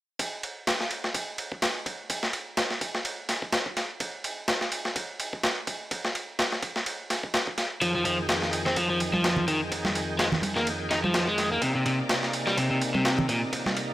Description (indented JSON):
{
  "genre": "breakbeat, breaks",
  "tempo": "126 BPM",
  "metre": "4/4",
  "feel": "swing 56% on 16ths",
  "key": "F dorian",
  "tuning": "A4 = 440 Hz",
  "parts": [
    { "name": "dusty soul sampler-style drum kit", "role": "drums", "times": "0.2-13.9 s", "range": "kick drum, ride cymbal, snare drum", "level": "-28 LUFS", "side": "equal", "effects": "overdrive, high-pass filter on kick, high-pass filter on cymbals, high-pass filter on snare" },
    { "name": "bright tonewheel organ", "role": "sustained chords", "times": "7.8-13.9 s", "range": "F2 to G5", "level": "-32 LUFS", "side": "equal", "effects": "overdrive, chorus vibrato, slow rotary speaker, vintage 12-bit sampler grit, sidechain pumping" },
    { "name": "overdriven electric guitar", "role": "riff", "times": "7.8-13.4 s", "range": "Bb2 to Eb4", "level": "-26 LUFS", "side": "equal", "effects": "analog delay" },
    { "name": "congas", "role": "percussion", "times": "9.1-13.7 s", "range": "none", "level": "-31 LUFS", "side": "right 2 dB", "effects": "none" }
  ],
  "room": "light reverb, digital ambience",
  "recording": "dry, gritty hardware recording",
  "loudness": "-25 LUFS",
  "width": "side -15 dB against mid",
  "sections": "0.2-13.9 A section",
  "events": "none",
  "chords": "0.2 N.C.; 7.8 Fm9; 11.6 Cm9"
}